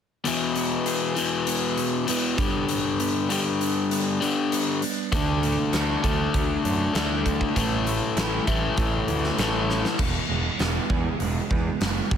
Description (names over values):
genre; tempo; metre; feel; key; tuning
quiet-loud alternative rock; 99 BPM; 4/4; straight; unclear; A4 = 440 Hz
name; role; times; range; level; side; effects
overdriven electric guitar; riff; 0.2-10.0 s; E2 to D4; -24 LUFS; left 6 dB; none
clean electric guitar; arpeggios; 0.3-12.2 s; E2 to G#4; -30 LUFS; right 11 dB; lush chorus, tape echo
huge arena drum kit; drums; 0.3-12.2 s; crash cymbal, hi-hat, kick drum, snare drum; -27 LUFS; equal; none
fuzz picked electric bass; bass; 5.1-12.2 s; E1 to F#2; -28 LUFS; right 1 dB; overdrive
room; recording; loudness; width
moderate small room reverb, RT60 0.6 s; none; -22 LUFS; side -8 dB against mid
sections
0.3-10.0 A section; 10.0-12.2 B section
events
drum fill 9.7-10.0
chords
0.3 E; 2.4 G; 5.1 D; 7.6 A; 10.0 E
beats
| 0.25 0.86 1.47 2.08 | 2.69 3.30 3.91 4.52 | 5.12 5.73 6.34 6.95 | 7.56 8.17 8.77 9.38 | 9.99 10.60 11.20 11.81